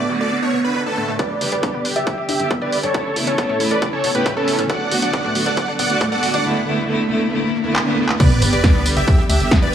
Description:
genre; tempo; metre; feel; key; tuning
uplifting trance; 137 BPM; 4/4; straight; unclear; A4 = 440 Hz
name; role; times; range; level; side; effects
big supersaw lead; melody; 0.0-9.7 s; C#4 to F#5; -22 LUFS; right 1 dB; sidechain pumping, low-pass filter, digital delay
warm velvety synth lead; second line; 0.0-1.1 s; B3; -23 LUFS; right 3 dB; chorus, digital delay
rich studio string section; sustained chords; 0.0-9.7 s; C#3 to B4; -23 LUFS; right 2 dB; sidechain pumping
wide unison pluck; arpeggios; 0.0-9.7 s; A3 to D5; -26 LUFS; left 1 dB; sidechain pumping, digital delay
noise sweep, riser and sub drop; sound effects; 0.0-9.7 s; none; -24 LUFS; equal; none
plucky unison lead; second line; 1.2-9.7 s; A4 to F#5; -28 LUFS; left 1 dB; phaser, sidechain pumping, digital delay
electronic kick drum; drums; 1.2-9.6 s; none; -18 LUFS; equal; overdrive, high-pass filter on kick
punchy analog drum machine; drums; 1.2-9.7 s; crash cymbal, handclaps, hi-hat, snare drum, tambourine; -22 LUFS; right 1 dB; sidechain pumping on hats, low-pass filter on hats, low-pass filter on snare, sidechain pumping on perc, low-pass filter on perc, sidechain pumping on cymbals, low-pass filter on cymbals
tight sequencer bass; bass; 1.4-9.7 s; F#1 to A2; -25 LUFS; equal; sidechain pumping, high-pass filter
room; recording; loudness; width
moderate lush hall reverb, RT60 2.0 s; small room ambience; -16 LUFS; side -9 dB against mid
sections
0.0-1.2 A section; 1.2-8.2 B section; 8.2-9.7 C section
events
noise sweep 0.0-1.2; build-up 1.2-8.2; riser 1.2-8.2; filter sweep on supersaw synth 1.2-8.2; filter sweep on digital synth lead 1.2-8.2; drum fill 4.7-6.4, 7.8-8.2; drop 8.2-9.7; impact 8.2-9.7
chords
0.0 Bm7; 1.2 G; 2.9 Aadd9; 4.7 Bm7; 8.2 G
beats
0.32 0.76 | 1.19 1.63 2.07 2.51 | 2.94 3.38 3.82 4.26 | 4.70 5.13 5.57 6.01 | 6.45 6.89 7.32 7.76 | 8.20 8.64 9.08 9.51

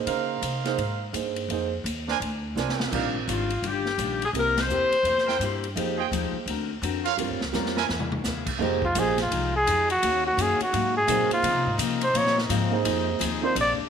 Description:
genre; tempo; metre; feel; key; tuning
jazz, big band swing; 169 BPM; 4/4; swing 63% on 8ths; F minor; A4 = 440 Hz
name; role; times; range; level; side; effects
warm upright piano; accompaniment; 0.0-13.5 s; G3 to D5; -30 LUFS; right 11 dB; none
upright bass; bass; 0.0-13.8 s; G1 to Db3; -31 LUFS; equal; none
clear trumpet section; stabs; 0.1-3.1, 5.3-7.8 s; D4 to Ab5; -30 LUFS; right 10 dB; none
swinging big-band drum kit; drums; 0.1-13.7 s; crash cymbal, hi-hat, kick drum, ride cymbal, snare drum, toms; -32 LUFS; left 1 dB; none
picked steel-string acoustic guitar; accompaniment; 2.9-13.8 s; Ab2 to A#4; -31 LUFS; left 12 dB; none
warm saxophone section; melody; 3.3-5.6 s; F4 to C5; -24 LUFS; left 3 dB; slapback echo
clear trombone section; sustained chords; 8.6-13.9 s; C3 to Ab4; -36 LUFS; equal; none
breathy trumpet; melody; 8.8-13.7 s; F4 to D5; -23 LUFS; equal; none
room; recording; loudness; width
moderate echo chamber reverb, RT60 1.4 s, studio reverb; 1960s-style stereo with parts hard left and right; -23 LUFS; side -7 dB against mid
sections
0.0-8.6 A section; 8.6-13.9 B section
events
drum fill 2.6-2.9, 7.5-8.2; band accent 4.5; trumpet solo 8.6-13.9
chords
0.1 Dbmaj13; 1.5 Fm7; 2.2 Bb9; 2.9 Ebmaj9; 4.3 C7; 5.8 Fm9; 6.5 D7alt; 7.2 Gm7b5; 7.9 C7alt; 8.6 Fm9; 10.0 Ebm7; 10.7 Ab9; 11.4 Dbmaj13; 12.8 Fm7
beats
| 0.07 0.43 0.79 1.14 | 1.50 1.85 2.21 2.56 | 2.92 3.28 3.63 3.99 | 4.34 4.70 5.05 5.41 | 5.76 6.12 6.47 6.83 | 7.18 7.54 7.89 8.25 | 8.60 8.96 9.31 9.66 | 10.02 10.37 10.72 11.08 | 11.43 11.79 12.14 12.49 | 12.85 13.20 13.55

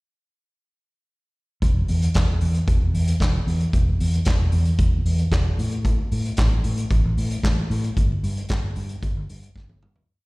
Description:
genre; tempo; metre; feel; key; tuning
disco; 113 BPM; 4/4; straight; E minor; A4 = 443 Hz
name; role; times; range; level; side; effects
fingered electric bass; bass; 1.6-10.0 s; E1 to A2; -21 LUFS; equal; none
vintage drum kit; drums; 1.6-10.1 s; handclaps, hi-hat, kick drum, snare drum, toms; -23 LUFS; equal; none
room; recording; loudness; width
little or no reverb; live gig heard through the venue's PA, recital hall reverb; -19 LUFS; side -24 dB against mid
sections
1.6-10.1 verse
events
fade-out 8.0-10.1; drum fill 9.6-10.1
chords
none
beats
| 1.62 2.15 2.68 3.21 | 3.73 4.26 4.79 5.32 | 5.85 6.38 6.91 7.43 | 7.96 8.49 9.03 9.56

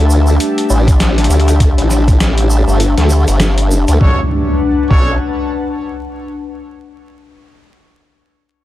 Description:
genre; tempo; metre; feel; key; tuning
glitch hop; 100 BPM; 4/4; swing 59% on 16ths; B minor; A4 = 439 Hz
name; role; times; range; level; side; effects
warbly tape-like pad; sustained chords; 0.0-4.3 s; G3 to D4; -25 LUFS; right 4 dB; chorus, built-in reverb, sidechain pumping
formant-sweep wobble bass; bass; 0.0-5.2 s; G1 to D2; -12 LUFS; equal; chorus
airy breathy pad; texture; 0.0-6.4 s; D4 to A5; -18 LUFS; left 5 dB; chorus, sidechain pumping
tube shaker; percussion; 0.1-4.0 s; none; -27 LUFS; right 2 dB; none
boom bap sampler-style drum kit; drums; 0.4-4.0 s; hi-hat, snare drum; -18 LUFS; equal; small room ambience
electronic kick drum; drums; 0.9-5.0 s; none; -11 LUFS; equal; small room ambience
brilliant horn section; stabs; 4.0-5.1 s; C#4 to C#5; -23 LUFS; right 1 dB; sidechain pumping, tape echo
impact; sound effects; 4.0-6.4 s; none; -21 LUFS; equal; none
room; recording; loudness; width
digital ambience; dense, heavily limited modern master, vinyl crackle; -10 LUFS; side -14 dB against mid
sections
0.0-4.0 A section; 4.0-6.4 B section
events
none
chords
0.0 A7sus4; 4.0 Bm7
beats
0.40 1.00 | 1.60 2.20 2.80 3.40 | 4.00 4.60 5.20 5.80

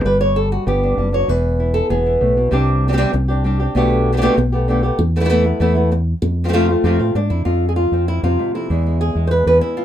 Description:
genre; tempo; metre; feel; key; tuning
flamenco; 194 BPM; 4/4; straight; unclear; A4 = 439 Hz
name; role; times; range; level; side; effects
flamenco guitar; melody; 0.0-9.8 s; E2 to C#5; -17 LUFS; equal; none
fingered electric bass; bass; 0.0-9.6 s; E1 to A2; -18 LUFS; equal; none
room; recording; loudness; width
moderate small room reverb, RT60 0.5 s; minimal, uncompressed stereo recording; -14 LUFS; side -10 dB against mid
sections
0.0-2.5 A section; 2.5-7.5 B section; 7.5-9.8 C section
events
nylon-string guitar solo 0.0-2.5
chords
0.0 G; 1.3 E; 2.5 Csus2; 3.8 Gadd9/B; 5.0 Esus4; 6.2 F; 7.5 F5; 8.7 E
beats
| 0.05 0.36 0.67 0.97 | 1.28 1.59 1.90 2.21 | 2.52 2.82 3.13 3.44 | 3.75 4.06 4.37 4.68 | 4.99 5.30 5.61 5.91 | 6.22 6.53 6.84 7.15 | 7.46 7.77 8.08 8.38 | 8.69 9.00 9.31 9.62

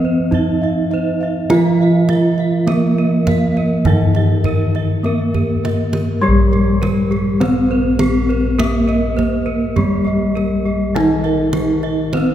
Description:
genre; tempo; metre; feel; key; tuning
Javanese gamelan; 51 BPM; 4/4; straight; Bb pelog barang; A4 = 440 Hz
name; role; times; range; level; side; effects
gamelan-type bronze metallophone; melody; 0.0-12.3 s; G3+20c to F4-40c; -18 LUFS; right 1 dB; none
gamelan-type bronze metallophone; accompaniment; 0.0-12.3 s; Eb3+30c to C4-50c; -20 LUFS; right 1 dB; none
gamelan-type bossed gongs; arpeggios; 0.0-12.3 s; G4+20c to F5-40c; -26 LUFS; left 3 dB; none
gamelan-type bronze metallophone; arpeggios; 0.0-12.3 s; G4+20c to F5-40c; -26 LUFS; right 4 dB; none
gamelan-type bossed gongs; bass; 0.0-12.3 s; Bb1 to G4+20c; -20 LUFS; left 1 dB; none
kendang; percussion; 0.3-12.3 s; none; -24 LUFS; right 2 dB; none
room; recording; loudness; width
wet church reverb, RT60 3.8 s; recorded in a church or concert hall; -13 LUFS; side -11 dB against mid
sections
0.0-12.3 A section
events
drum fill 5.3-6.2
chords
none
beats
0.33 | 1.51 2.69 3.87 5.05 | 6.23 7.41 8.59 9.77 | 10.95 12.13

